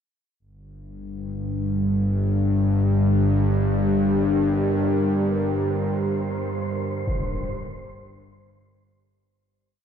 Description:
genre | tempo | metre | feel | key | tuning
dark ambient drone | free time | none | none | unclear | A4 = 442 Hz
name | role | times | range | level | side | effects
dark analog pad | sustained chords | 1.0-9.3 s | G3 to Bb4 | -25 LUFS | equal | chorus
bowed-like drone | drone | 1.1-9.4 s | G1 to G2 | -23 LUFS | left 1 dB | built-in reverb
wind-like tuned noise texture | texture | 5.5-9.3 s | C5 | -36 LUFS | right 3 dB | built-in reverb
impact | percussion | 7.1-7.3 s | none | -30 LUFS | equal | low-pass filter on sfx
room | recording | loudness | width
moderate huge ambient reverb, RT60 8.9 s | dark, warm production | -20 LUFS | side -8 dB against mid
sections
0.4-9.3 A section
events
fade-out 4.9-9.3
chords
0.4 Gm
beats
free time

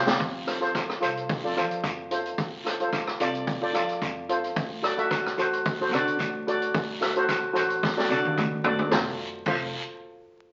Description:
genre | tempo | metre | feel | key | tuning
calypso | 110 BPM | 4/4 | straight | F major | A4 = 441 Hz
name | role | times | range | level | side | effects
steel pan | accompaniment | 0.0-9.7 s | F4 to E5 | -29 LUFS | equal | none
upright bass | bass | 0.0-9.7 s | F1 to F3 | -40 LUFS | equal | none
street-band drum kit | drums | 0.1-9.6 s | crash cymbal, hi-hat, kick drum, rim click, snare drum, toms | -31 LUFS | equal | none
guiro | percussion | 0.2-9.7 s | none | -39 LUFS | equal | none
room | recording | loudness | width
wet club reverb, RT60 0.9 s | very old 78 rpm record, vinyl crackle, nothing above 7.6 kHz | -27 LUFS | mono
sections
0.2-8.9 A section; 8.9-10.5 B section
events
drum fill 0.0, 7.8-8.9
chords
0.2 F; 4.6 D7; 8.9 F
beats
| 0.21 0.75 1.30 1.84 | 2.39 2.93 3.48 4.02 | 4.57 5.11 5.66 6.20 | 6.74 7.29 7.83 8.38 | 8.92 9.46

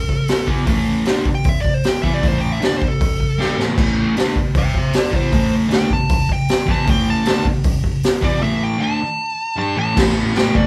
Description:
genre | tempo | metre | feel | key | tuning
garage rock duo or trio | 155 BPM | 4/4 | straight | A minor | A4 = 444 Hz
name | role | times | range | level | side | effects
fuzz lead guitar | melody | 0.0-10.7 s | A4 to A5 | -26 LUFS | equal | distortion
raw garage drum kit | drums | 0.1-10.6 s | crash cymbal, hi-hat, kick drum, snare drum | -19 LUFS | equal | none
fuzz guitar | riff | 0.5-10.7 s | A2 to G4 | -22 LUFS | equal | distortion
room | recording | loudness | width
light reverb | band playing live in one room | -18 LUFS | mono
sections
0.0-10.0 A section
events
lead electric guitar solo 0.0-10.0; drum fill 3.4-3.8; break 8.4-10.0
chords
0.0 A5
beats
0.29 | 0.68 1.07 1.46 1.85 | 2.23 2.62 3.01 3.40 | 3.78 4.17 4.55 4.94 | 5.33 5.71 6.10 6.49 | 6.87 7.26 7.65 8.04 | 8.42 8.81 9.20 9.59 | 9.97 10.36

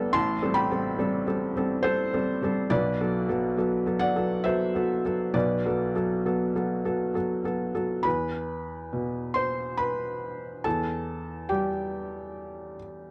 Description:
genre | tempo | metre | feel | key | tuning
neoclassical minimalist piano | 69 BPM | 3/4 | rubato | E minor | A4 = 435 Hz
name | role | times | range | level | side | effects
felt-muted upright piano | solo | 0.0-13.1 s | A1 to C6 | -28 LUFS | equal | none
room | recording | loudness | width
light reverb | dry, close 1970s-style studio recording | -27 LUFS | mono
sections
0.0-8.0 A section; 8.0-13.1 B section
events
none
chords
0.1 Am7; 2.7 Bm7; 8.0 Em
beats
| 0.14 0.98 1.83 | 2.70 3.57 4.45 | 5.34 6.24 7.15 | 8.05 8.92 9.79 | 10.65 11.50 12.37

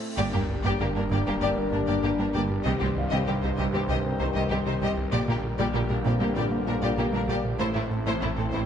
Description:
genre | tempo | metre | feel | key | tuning
cinematic, hybrid orchestral and electronic film score | 97 BPM | 4/4 | straight | G minor | A4 = 441 Hz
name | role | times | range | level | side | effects
chorused pulse-width pad | sustained chords | 0.0-8.7 s | D3 to C5 | -34 LUFS | left 1 dB | none
cymbal swell and sub drop | sound effects | 0.0-2.7 s | none | -36 LUFS | equal | none
felt-muted upright piano | texture | 0.0-8.7 s | C4 to F5 | -38 LUFS | left 4 dB | none
clear symphonic violin section | melody | 0.2-8.6 s | E4 to Eb5 | -33 LUFS | left 4 dB | none
clear symphonic violin section | second line | 0.2-8.6 s | A3 to G4 | -34 LUFS | left 3 dB | none
rich symphonic viola section | accompaniment | 0.2-8.6 s | G3 to Bb3 | -36 LUFS | equal | none
clear trombone section | sustained chords | 0.2-8.7 s | G2 to G3 | -35 LUFS | right 1 dB | none
warm French horn section | sustained chords | 0.2-8.7 s | D3 to D4 | -34 LUFS | left 4 dB | none
rubbery square bass | riff | 0.2-8.6 s | C2 to Bb3 | -31 LUFS | right 2 dB | none
clear studio cello section | bass | 0.2-8.6 s | G2 to C3 | -33 LUFS | right 2 dB | none
phased detuned saw bass | bass | 0.2-8.7 s | G1 to C2 | -34 LUFS | equal | phaser
warm symphonic double bass section | bass | 0.2-8.6 s | G1 to C2 | -34 LUFS | right 3 dB | none
room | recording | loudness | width
moderate scoring stage reverb, RT60 1.9 s | nothing above 10.8 kHz | -24 LUFS | side -8 dB against mid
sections
0.2-8.7 A section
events
cymbal swell 0.0; impact 0.2-2.7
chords
0.2 Gm; 2.7 Cm; 5.1 Gm/Bb; 7.6 Am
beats
| 0.18 0.80 1.41 2.03 | 2.65 3.27 3.89 4.51 | 5.13 5.74 6.36 6.98 | 7.60 8.22

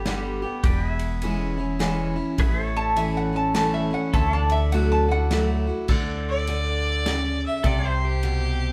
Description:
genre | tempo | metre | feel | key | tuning
honky-tonk and classic country | 103 BPM | 3/4 | swing 62% on 8ths | D major | A4 = 438 Hz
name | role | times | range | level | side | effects
lap resonator guitar | melody | 0.0-5.9 s | G4 to A5 | -29 LUFS | equal | none
picked steel-string acoustic guitar | accompaniment | 0.0-8.7 s | E2 to G4 | -29 LUFS | equal | none
pedal steel guitar | sustained chords | 0.0-8.7 s | G4 to F#5 | -36 LUFS | equal | none
upright bass | bass | 0.0-8.7 s | E1 to D2 | -28 LUFS | equal | none
natural country drum kit | drums | 0.1-8.4 s | crash cymbal, kick drum, ride cymbal, snare drum | -28 LUFS | equal | none
clear fiddle | second line | 6.3-8.7 s | G4 to E5 | -30 LUFS | equal | none
room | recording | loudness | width
moderate studio reverb, RT60 0.8 s | band playing live in one room | -23 LUFS | mono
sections
0.0-5.9 A section; 5.9-8.7 A section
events
resonator guitar played with a steel bar solo 0.0-5.9; fiddle solo 5.9-8.7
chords
0.0 G; 0.6 E6; 2.4 A; 4.1 Dadd9; 5.9 D; 7.6 C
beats
0.05 | 0.63 1.22 1.80 | 2.39 2.97 3.56 | 4.14 4.72 5.31 | 5.89 6.48 7.06 | 7.64 8.23

